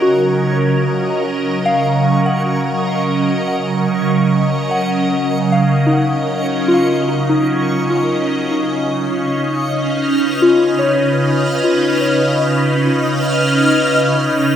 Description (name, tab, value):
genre	ambient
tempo	free time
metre	none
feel	none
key	unclear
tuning	A4 = 440 Hz
part	evolving wavetable pad	sustained chords	0.0-14.6 s	Db3 to Eb5	-15 LUFS	right 1 dB	ensemble chorus, built-in reverb, phaser
part	soft synth bell	arpeggios	0.0-14.6 s	Eb4 to Gb5	-18 LUFS	left 2 dB	chorus, phaser, tape echo
part	backwards swelling texture	texture	0.0-14.6 s	Db6 to F6	-25 LUFS	right 1 dB	built-in reverb
room	wet spring reverb, RT60 2.3 s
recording	echo-heavy mix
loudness	-13 LUFS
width	side -9 dB against mid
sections	0.0-14.6 A section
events	fade-in on synth texture 0.0-14.6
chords	0.0 Ebm7/Db; 8.3 Db9